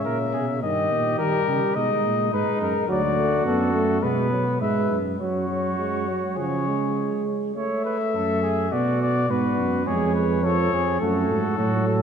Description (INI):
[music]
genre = classical, imitative canzona for brass ensemble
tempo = 104 BPM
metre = 4/4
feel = straight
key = F# minor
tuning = A4 = 440 Hz
[part]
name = mellow cornet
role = melody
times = 0.0-12.0 s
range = A4 to E5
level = -26 LUFS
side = left 6 dB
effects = none
[part]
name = mellow trumpet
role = second line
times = 0.0-12.0 s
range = B3 to C#5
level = -29 LUFS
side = right 3 dB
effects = none
[part]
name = warm euphonium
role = accompaniment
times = 0.0-12.0 s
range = C#3 to B3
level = -26 LUFS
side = right 2 dB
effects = none
[part]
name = dark tuba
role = bass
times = 0.0-12.0 s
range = D2 to D#3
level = -26 LUFS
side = right 2 dB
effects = none
[sound]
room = wet church reverb, RT60 2.7 s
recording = minimal, uncompressed stereo recording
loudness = -21 LUFS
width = side -7 dB against mid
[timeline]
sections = 0.0-7.6 A section; 7.6-12.0 B section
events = none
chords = 0.0 A#dim; 0.6 D#/G; 1.8 G#m; 2.9 D; 4.0 F#9sus4; 5.2 C#sus4/F#; 6.4 C#; 7.6 F#m/A; 8.7 Bm; 9.9 C#/E#; 11.0 F#m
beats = 0.06 | 0.63 1.20 1.76 2.33 | 2.90 3.46 4.04 4.61 | 5.20 5.79 6.38 6.97 | 7.56 8.14 8.72 9.30 | 9.87 10.44 11.01 11.59